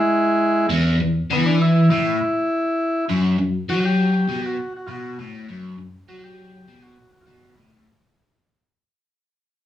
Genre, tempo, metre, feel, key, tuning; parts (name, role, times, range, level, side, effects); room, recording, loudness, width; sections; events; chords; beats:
rock; 100 BPM; 4/4; straight; A4 = 440 Hz
combo organ; melody; 0.0-7.5 s; G#3 to G4; -21 LUFS; equal
biting overdriven guitar; riff; 0.7-7.9 s; E2 to F#3; -19 LUFS; left 1 dB; phaser
wet studio reverb, RT60 0.8 s; band playing live in one room, small room ambience; -17 LUFS; side -12 dB against mid
0.0-7.9 A section
fade-out 0.0-7.9; transistor combo organ solo 0.0-7.9
0.0 E; 3.1 N.C.
0.10 | 0.69 1.29 1.89 2.48 | 3.08 3.68 4.27 4.87 | 5.47 6.07 6.66 7.26